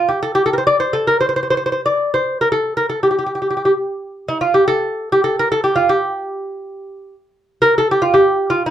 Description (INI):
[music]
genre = Persian modal ensemble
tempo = free time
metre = none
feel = none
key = unclear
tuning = A4 = 440 Hz
[part]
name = lute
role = solo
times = 0.0-8.7 s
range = Eb4+45c to D5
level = -14 LUFS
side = equal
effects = none
[sound]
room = moderate studio reverb, RT60 0.5 s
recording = dark, warm production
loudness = -14 LUFS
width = side -10 dB against mid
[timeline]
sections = 0.0-8.7 A section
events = none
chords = none